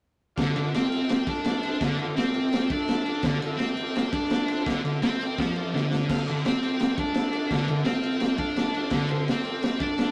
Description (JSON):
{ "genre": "garage rock duo or trio", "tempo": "169 BPM", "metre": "4/4", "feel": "straight", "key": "D minor", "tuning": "A4 = 437 Hz", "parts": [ { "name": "combo organ", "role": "sustained chords", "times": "0.4-10.1 s", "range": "F4 to A5", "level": "-38 LUFS", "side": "equal", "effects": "spring reverb" }, { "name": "thick fuzz guitar", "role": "riff", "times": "0.4-10.1 s", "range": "D3 to D4", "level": "-29 LUFS", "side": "equal", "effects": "distortion" }, { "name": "crunchy breakbeat drum kit", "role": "drums", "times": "0.4-10.1 s", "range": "crash cymbal, kick drum, ride cymbal, snare drum", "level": "-30 LUFS", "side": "equal", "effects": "none" } ], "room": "moderate stone room reverb, RT60 1.1 s", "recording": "rough rehearsal-room recording, tube saturation", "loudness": "-26 LUFS", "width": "mono", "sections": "0.4-10.1 A section", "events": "drum fill 5.7-6.1; transistor combo organ fill 8.4-8.9", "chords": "0.4 Dm" }